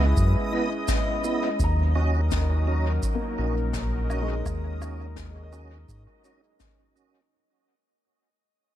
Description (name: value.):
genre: ambient dub.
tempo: 84 BPM.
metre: 4/4.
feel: swing 60% on 16ths.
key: unclear.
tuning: A4 = 440 Hz.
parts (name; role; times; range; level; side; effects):
warm analog pad; sustained chords; 0.0-7.3 s; F#3 to D#5; -32 LUFS; equal; chorus.
felt-muted upright piano; arpeggios; 0.0-8.0 s; G#3 to A#5; -37 LUFS; left 4 dB; tape echo.
tonewheel organ; stabs; 0.0-7.2 s; B3 to D#5; -32 LUFS; right 5 dB; overdrive, chorus vibrato, slow rotary speaker, dub echo.
round analog bass; bass; 0.0-6.1 s; A#1 to G#2; -24 LUFS; equal; none.
backwards swelling texture; texture; 0.0-7.3 s; D#5; -36 LUFS; left 2 dB; built-in reverb.
electronic kick drum; drums; 0.2-6.8 s; none; -29 LUFS; equal; none.
shaker, snare drum and woodblock; drums; 0.2-7.1 s; none; -36 LUFS; left 3 dB; dub echo.
room: small room ambience.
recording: echo-heavy mix.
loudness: -23 LUFS.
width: side -12 dB against mid.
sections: 0.0-7.3 A section.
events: fade-out 0.0-7.3.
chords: 0.0 C#m9; 1.6 D#m7.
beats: 0.17 0.89 | 1.60 2.31 3.03 3.74 | 4.46 5.17 5.89 6.60.